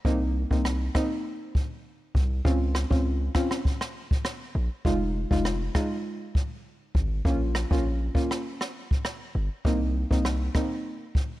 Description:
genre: dancehall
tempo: 100 BPM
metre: 4/4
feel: straight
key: unclear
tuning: A4 = 437 Hz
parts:
  - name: soft round pluck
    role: accompaniment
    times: 0.0-10.7 s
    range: Ab3 to F4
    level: -29 LUFS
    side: equal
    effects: chorus
  - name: hard-hitting 808-style bass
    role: bass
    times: 0.0-10.5 s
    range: F1 to Db2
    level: -27 LUFS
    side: equal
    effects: none
  - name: jazz brush drum kit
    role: drums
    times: 0.0-11.3 s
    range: kick drum, rim click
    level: -27 LUFS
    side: equal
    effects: none
room: studio reverb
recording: dry, gritty hardware recording, cassette tape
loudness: -25 LUFS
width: side -16 dB against mid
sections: 0.0-11.4 A section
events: break 0.0-4.8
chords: 0.1 Cm7; 2.5 Dbmaj7; 4.8 Fm7; 7.2 Bbm; 9.7 Cm7

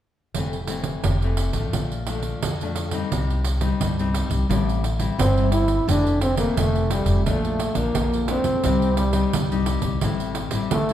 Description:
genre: samba and choro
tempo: 87 BPM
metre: 4/4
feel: straight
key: F major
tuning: A4 = 440 Hz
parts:
  - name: upright bass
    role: bass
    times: 0.3-10.9 s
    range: F1 to F2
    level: -24 LUFS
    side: equal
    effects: none
  - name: pandeiro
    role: percussion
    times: 0.3-10.9 s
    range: none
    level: -27 LUFS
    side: right 4 dB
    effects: none
  - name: nylon-string guitar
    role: accompaniment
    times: 0.4-10.9 s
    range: F2 to E4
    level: -27 LUFS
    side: left 6 dB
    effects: none
  - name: mellow trombone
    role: melody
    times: 5.2-10.9 s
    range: G3 to E4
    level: -23 LUFS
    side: right 1 dB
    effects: none
room: moderate recital hall reverb, RT60 1.3 s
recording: recorded in a church or concert hall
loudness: -20 LUFS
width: side -11 dB against mid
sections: 0.3-5.9 A section; 5.9-10.9 B section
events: none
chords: 0.3 Fmaj7; 1.7 Bbmaj7; 3.1 Cm; 4.5 Am7; 5.9 Fmaj7; 7.3 Bbmaj7; 8.6 Cm; 10.0 Am7

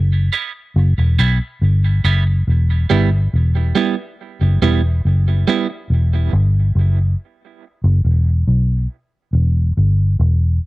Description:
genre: dub reggae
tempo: 70 BPM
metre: 4/4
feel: straight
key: E minor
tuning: A4 = 441 Hz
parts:
  - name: vintage muted fingered electric bass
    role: bass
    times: 0.0-10.6 s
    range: E1 to B1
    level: -13 LUFS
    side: equal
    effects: tube saturation
  - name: clean electric guitar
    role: accompaniment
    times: 0.3-5.7 s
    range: G3 to E4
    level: -20 LUFS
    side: right 7 dB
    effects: tremolo, high-pass filter, cassette tape, tape echo
room: little or no reverb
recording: home recording on cassette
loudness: -14 LUFS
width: side -19 dB against mid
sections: 0.0-10.7 A section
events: none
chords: 0.0 Em

